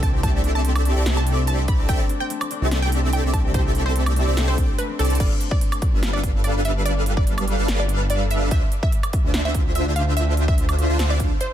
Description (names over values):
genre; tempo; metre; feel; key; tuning
future bass; 145 BPM; 4/4; half-time; C major; A4 = 437 Hz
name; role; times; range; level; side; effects
wide unison pluck; melody; 0.0-11.5 s; A4 to B5; -30 LUFS; right 1 dB; sidechain pumping, ping-pong delay
concert harp; arpeggios; 0.0-8.1 s; A3 to E4; -32 LUFS; left 7 dB; sidechain pumping, low-pass filter, ping-pong delay
supersaw chords; riff; 0.0-11.3 s; D3 to A5; -26 LUFS; right 1 dB; ensemble chorus, sidechain pumping
wide detuned saw bass; bass; 0.0-11.3 s; G1 to D2; -21 LUFS; equal; chorus, sidechain pumping
big-room dance drum kit; drums; 0.0-11.5 s; crash cymbal, hi-hat, snare drum, woodblock; -30 LUFS; right 1 dB; overdrive
electronic kick drum; drums; 0.0-11.3 s; none; -21 LUFS; equal; none
room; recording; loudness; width
little or no reverb; dense, heavily limited modern master; -18 LUFS; side -11 dB against mid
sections
0.0-5.2 A section; 5.2-11.5 A section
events
drop 0.0-5.2, 5.2-11.5; kick drops out 4.8-5.2; drum fill 5.0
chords
0.0 C69; 5.2 G7; 8.5 Dm9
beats
| 0.23 0.65 1.06 1.48 | 1.89 2.30 2.72 3.13 | 3.54 3.96 4.37 4.79 | 5.20 5.61 6.03 6.44 | 6.86 7.27 7.68 8.10 | 8.51 8.92 9.34 9.75 | 10.17 10.58 10.99 11.41